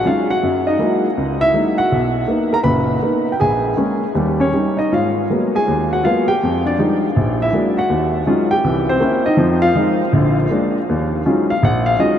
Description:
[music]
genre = solo jazz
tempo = 161 BPM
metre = 4/4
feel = swing 64% on 8ths, rubato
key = Eb minor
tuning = A4 = 438 Hz
[part]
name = warm baby grand piano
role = solo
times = 0.0-12.2 s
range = F#1 to B5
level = -14 LUFS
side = equal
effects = none
[sound]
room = wet huge ambient reverb, RT60 9.3 s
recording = in a vast, echoing space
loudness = -14 LUFS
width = side -9 dB against mid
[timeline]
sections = 0.0-10.9 A section; 10.9-12.2 B section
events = grand piano solo 10.9-12.2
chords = 0.4 Gb13; 1.9 Bmaj7; 3.4 Bbm7; 4.1 Eb7; 4.9 Abm9; 6.4 Fm9; 7.2 Bbaug7; 7.9 Ebm11; 8.6 C7b9; 9.4 Fm7; 10.1 Bb7; 10.9 Ebm11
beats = 0.06 | 0.43 0.80 1.17 1.54 | 1.91 2.27 2.65 3.02 | 3.39 3.77 4.15 4.53 | 4.91 5.29 5.66 6.04 | 6.42 6.79 7.16 7.53 | 7.90 8.27 8.63 9.00 | 9.38 9.75 10.13 10.51 | 10.89 11.26 11.63 11.99

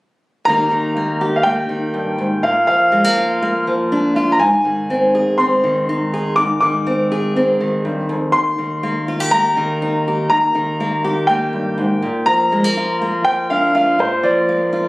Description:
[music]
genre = indie folk with a building arrangement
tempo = 122 BPM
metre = 4/4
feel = straight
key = Eb major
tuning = A4 = 435 Hz
[part]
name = bright upright piano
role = melody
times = 0.5-14.9 s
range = C5 to D6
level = -17 LUFS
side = equal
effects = none
[part]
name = fingerpicked steel-string acoustic guitar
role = accompaniment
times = 0.5-14.9 s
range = Eb2 to Ab4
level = -17 LUFS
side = equal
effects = none
[sound]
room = light reverb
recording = recorded on a phone in the room, studio reverb, compression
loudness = -14 LUFS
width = side -21 dB against mid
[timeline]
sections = 0.5-14.9 A section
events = none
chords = 0.5 Eb; 2.4 Bb; 4.4 Ab; 8.3 Eb; 12.0 Bb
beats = | 0.47 0.96 1.46 1.95 | 2.44 2.93 3.43 3.92 | 4.41 4.90 5.39 5.89 | 6.38 6.87 7.36 7.85 | 8.34 8.84 9.33 9.82 | 10.31 10.80 11.29 11.78 | 12.27 12.76 13.26 13.75 | 14.24 14.73

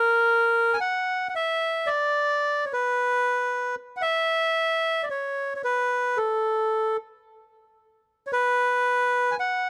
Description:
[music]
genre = hawaiian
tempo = 112 BPM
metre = 4/4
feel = swing 58% on 8ths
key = unclear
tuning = A4 = 439 Hz
[part]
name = melodica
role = solo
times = 0.0-9.7 s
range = A4 to G#5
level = -24 LUFS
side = equal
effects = none
[sound]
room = small room ambience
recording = dry, close 1970s-style studio recording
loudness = -24 LUFS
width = mono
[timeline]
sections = 0.0-9.7 A section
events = none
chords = none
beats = 0.26 0.79 1.33 | 1.87 2.40 2.94 3.47 | 4.01 4.55 5.08 5.62 | 6.15 6.69 7.22 7.76 | 8.30 8.83 9.37

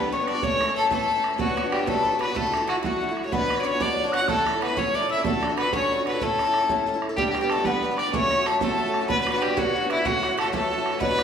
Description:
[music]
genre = celtic folk, Celtic jig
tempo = 125 BPM (dotted quarters)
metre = 6/8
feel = straight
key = A mixolydian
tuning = A4 = 439 Hz
[part]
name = clear fiddle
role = melody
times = 0.0-11.2 s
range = E4 to F#5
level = -24 LUFS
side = left 1 dB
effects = none
[part]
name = Irish bouzouki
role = second line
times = 0.0-11.2 s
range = E3 to F#4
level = -32 LUFS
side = right 4 dB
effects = none
[part]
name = mid whistle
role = second line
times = 0.0-11.2 s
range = E5 to F#6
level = -31 LUFS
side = left 3 dB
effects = none
[part]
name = picked old ladder-braced acoustic guitar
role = accompaniment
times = 0.0-11.2 s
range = F#2 to C#5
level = -28 LUFS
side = left 2 dB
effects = none
[part]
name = bodhran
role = percussion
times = 0.3-11.2 s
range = none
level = -30 LUFS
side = right 4 dB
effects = none
[sound]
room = wet recital hall reverb, RT60 1.5 s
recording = recorded in a church or concert hall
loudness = -21 LUFS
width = side -7 dB against mid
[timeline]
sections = 0.0-7.2 A section; 7.2-11.2 A section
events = none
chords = 0.4 A; 1.4 Bm; 2.4 Dadd9; 3.3 Bmadd9; 4.3 A; 5.2 D; 6.2 A; 7.2 G; 8.1 F#m; 9.1 Bm; 10.1 F#m7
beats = | 0.43 0.91 | 1.39 1.88 | 2.36 2.84 | 3.32 3.80 | 4.29 4.77 | 5.25 5.73 | 6.21 6.69 | 7.17 7.65 | 8.13 8.61 | 9.09 9.57 | 10.05 10.53 | 11.01

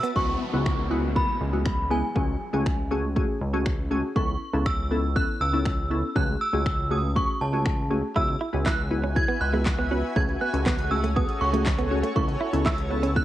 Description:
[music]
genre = dance-pop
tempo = 120 BPM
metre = 4/4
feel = straight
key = unclear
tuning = A4 = 440 Hz
[part]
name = synth chime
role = melody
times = 0.0-13.2 s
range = G#5 to G#6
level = -29 LUFS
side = right 1 dB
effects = ensemble chorus, tremolo, cassette tape
[part]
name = shimmering ambient pad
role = sustained chords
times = 0.0-0.1, 8.6-13.2 s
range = E4 to A5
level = -35 LUFS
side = equal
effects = chorus, built-in reverb, sidechain pumping, cassette tape
[part]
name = direct-recorded clean electric guitar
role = riff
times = 0.0-0.1, 8.2-13.1 s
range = G#3 to E4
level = -30 LUFS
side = right 4 dB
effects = wide subtle chorus, cassette tape
[part]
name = pop drum kit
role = drums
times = 0.0-13.2 s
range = finger snaps, handclaps, hi-hat, kick drum, shaker, snare drum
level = -27 LUFS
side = equal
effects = none
[part]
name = glassy wavetable pluck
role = accompaniment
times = 0.2-13.2 s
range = G#3 to B4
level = -29 LUFS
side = left 1 dB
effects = chorus, sidechain pumping, cassette tape
[part]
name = chorused synth bass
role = bass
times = 0.2-13.2 s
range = C#2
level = -28 LUFS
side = equal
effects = sidechain pumping
[part]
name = downlifter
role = sound effects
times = 0.2-4.2 s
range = none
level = -36 LUFS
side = left 1 dB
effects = none
[sound]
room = little or no reverb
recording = home recording on cassette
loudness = -22 LUFS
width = side -13 dB against mid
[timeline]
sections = 0.2-13.2 A section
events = none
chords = 0.2 Eadd9/C#; 2.2 F#madd9/C#; 4.2 Aadd9/C#; 6.2 F#madd9/C#; 8.2 Eadd9/C#; 10.2 F#madd9/C#; 12.2 Aadd9/C#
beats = | 0.16 0.66 1.16 1.66 | 2.16 2.66 3.16 3.66 | 4.16 4.66 5.16 5.66 | 6.16 6.66 7.16 7.66 | 8.16 8.66 9.16 9.66 | 10.16 10.66 11.16 11.66 | 12.16 12.66 13.16

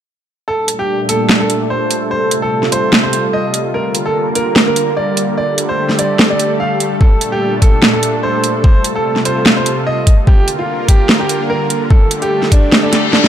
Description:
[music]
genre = heavy wobble dubstep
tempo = 147 BPM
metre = 4/4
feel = swing 54% on 16ths, half-time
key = G minor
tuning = A4 = 440 Hz
[part]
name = bright baby grand piano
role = melody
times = 0.5-13.3 s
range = D4 to F5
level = -17 LUFS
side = right 1 dB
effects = tape echo
[part]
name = supersaw pad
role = sustained chords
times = 0.5-13.3 s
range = Bb2 to Bb4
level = -17 LUFS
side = equal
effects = sidechain pumping, low-pass filter
[part]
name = dubstep drum kit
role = drums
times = 0.7-13.3 s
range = hi-hat, snare drum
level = -13 LUFS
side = equal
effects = studio reverb
[part]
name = electronic kick drum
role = drums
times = 7.0-12.6 s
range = none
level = -8 LUFS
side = equal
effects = studio reverb
[part]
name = reverse cymbal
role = sound effects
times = 12.8-13.3 s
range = none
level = -17 LUFS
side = left 6 dB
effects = none
[sound]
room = moderate lush hall reverb, RT60 1.7 s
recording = dark, warm production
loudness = -11 LUFS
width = side -10 dB against mid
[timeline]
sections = 0.5-13.3 A section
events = filter sweep on supersaw synth 0.5-13.3; reverse cymbal 12.8-13.3; drum fill 12.9-13.3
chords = 0.5 Gmadd9; 2.1 Fadd9; 3.7 Bb6; 5.4 Dsus4; 7.0 Gmadd9; 8.6 Fadd9; 10.3 Bb6; 11.9 Dsus4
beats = | 0.48 0.89 1.29 1.70 | 2.11 2.52 2.93 3.33 | 3.74 4.15 4.56 4.97 | 5.38 5.78 6.19 6.60 | 7.01 7.42 7.82 8.23 | 8.64 9.05 9.46 9.87 | 10.27 10.68 11.09 11.50 | 11.91 12.31 12.72 13.13

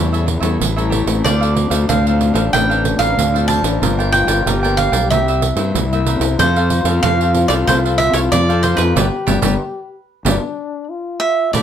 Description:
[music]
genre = samba and choro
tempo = 93 BPM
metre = 4/4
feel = straight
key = unclear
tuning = A4 = 437 Hz
[part]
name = cavaquinho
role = melody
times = 0.0-11.6 s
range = A4 to A5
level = -18 LUFS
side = right 3 dB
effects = none
[part]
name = mellow trombone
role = second line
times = 0.0-11.6 s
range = D4 to G4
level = -23 LUFS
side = left 5 dB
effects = none
[part]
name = cavaquinho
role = accompaniment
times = 0.0-11.6 s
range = D4 to A5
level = -25 LUFS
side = right 2 dB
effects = none
[part]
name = nylon-string guitar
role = accompaniment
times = 0.0-11.6 s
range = G2 to A4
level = -24 LUFS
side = left 8 dB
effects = none
[part]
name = fuzz fingered electric bass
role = bass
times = 0.0-11.6 s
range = G1 to A2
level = -18 LUFS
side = equal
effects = overdrive
[part]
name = pandeiro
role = percussion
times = 0.1-11.6 s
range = none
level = -21 LUFS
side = right 7 dB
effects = none
[sound]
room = moderate studio reverb, RT60 0.6 s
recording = none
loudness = -13 LUFS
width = side -9 dB against mid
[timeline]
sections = 0.0-11.5 A section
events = band accent 9.0-11.5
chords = 0.0 A7; 1.2 Dm7; 3.8 Gm7; 5.1 C7; 6.4 Fmaj7; 9.0 G7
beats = 0.60 | 1.25 1.89 2.53 3.18 | 3.82 4.46 5.11 5.75 | 6.39 7.04 7.68 8.32 | 8.97 9.61 10.25 10.90 | 11.54

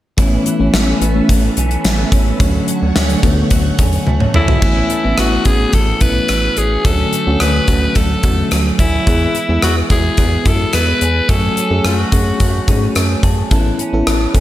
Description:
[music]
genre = 1980s-style pop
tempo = 108 BPM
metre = 4/4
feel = straight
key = A major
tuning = A4 = 441 Hz
[part]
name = FM electric piano with auto-pan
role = accompaniment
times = 0.2-14.4 s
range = D3 to A5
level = -19 LUFS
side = left 2 dB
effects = none
[part]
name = phased string machine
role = sustained chords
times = 0.2-4.6 s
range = D3 to F#5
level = -24 LUFS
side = equal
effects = ensemble chorus, phaser
[part]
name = twelve-string electric guitar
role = riff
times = 0.2-14.4 s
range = E3 to A4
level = -23 LUFS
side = right 4 dB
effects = lush chorus, tape echo
[part]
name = rubbery square bass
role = bass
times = 0.2-14.4 s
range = A1 to G#2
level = -17 LUFS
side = equal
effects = none
[part]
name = gated 80s drum kit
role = drums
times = 0.2-14.4 s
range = crash cymbal, hi-hat, kick drum, rim click, snare drum, toms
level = -16 LUFS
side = equal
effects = none
[part]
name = raspy alto saxophone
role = melody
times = 4.4-12.9 s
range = E4 to B4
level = -18 LUFS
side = left 2 dB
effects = none
[sound]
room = moderate recital hall reverb, RT60 1.4 s, small room reverb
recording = big arena sound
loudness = -12 LUFS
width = side -14 dB against mid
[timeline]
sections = 0.2-4.6 A section; 4.6-14.4 B section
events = drum fill 4.1-4.6; FM electric piano fill 12.7-13.5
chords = 0.2 Aadd9; 2.4 Dmaj7; 4.6 Aadd9; 6.8 Dmaj7; 9.1 E; 11.3 F#madd9; 13.5 Aadd9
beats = | 0.18 0.74 1.29 1.85 | 2.40 2.96 3.51 4.07 | 4.62 5.18 5.74 6.29 | 6.85 7.40 7.96 8.51 | 9.07 9.62 10.18 10.74 | 11.29 11.85 12.40 12.96 | 13.51 14.07

